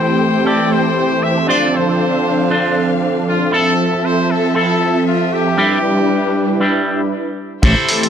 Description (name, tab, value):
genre	nu-disco, nu disco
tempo	117 BPM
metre	4/4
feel	swing 56% on 16ths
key	unclear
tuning	A4 = 440 Hz
part	bright trumpet section	melody	0.0-8.1 s	F4 to E5	-19 LUFS	left 1 dB	tape echo
part	warm analog pad	accompaniment	0.0-8.1 s	E3 to E5	-16 LUFS	right 1 dB	chorus, sidechain pumping
part	dark symphonic string section	sustained chords	0.0-8.1 s	D3 to C6	-21 LUFS	left 1 dB	sidechain pumping
part	electric guitar with an envelope filter	riff	0.4-8.0 s	G3 to C5	-19 LUFS	right 1 dB	analog chorus, low-pass filter, analog delay
part	fat analog bass	bass	7.6-7.7 s	A1	-14 LUFS	equal	none
part	dusty soul sampler-style drum kit	drums	7.6-8.1 s	crash cymbal, hi-hat	-18 LUFS	right 2 dB	none
part	kick drum	drums	7.6-7.7 s	none	-14 LUFS	equal	none
room	moderate plate reverb, RT60 1.5 s, small room ambience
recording	none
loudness	-13 LUFS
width	side -8 dB against mid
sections	0.0-7.6 A section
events	stop 7.1-7.6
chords	0.0 Am7; 1.5 Dm7; 3.5 Fmaj7; 5.6 Em7/G